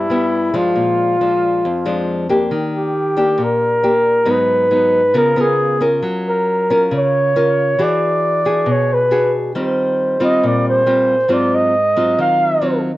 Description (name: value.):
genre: bossa nova.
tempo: 137 BPM.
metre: 4/4.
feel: straight.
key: unclear.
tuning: A4 = 441 Hz.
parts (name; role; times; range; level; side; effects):
breathy flugelhorn; melody; 0.0-12.8 s; E4 to F5; -15 LUFS; equal; none.
nylon-string guitar; accompaniment; 0.0-13.0 s; F2 to Bb4; -18 LUFS; left 1 dB; none.
room: moderate studio reverb, RT60 0.5 s.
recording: worn, warbling old tape, cassette tape, warbly pitch drift.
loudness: -13 LUFS.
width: side -16 dB against mid.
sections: 0.0-2.5 A section; 2.5-13.0 B section.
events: none.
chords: 0.0 Cmaj7 (rootless); 0.8 Bb7; 2.5 Ebmaj7; 4.3 Abm7; 5.2 Db6; 6.0 Gbmaj7; 7.8 E9; 9.5 Eb69; 11.3 Ab6.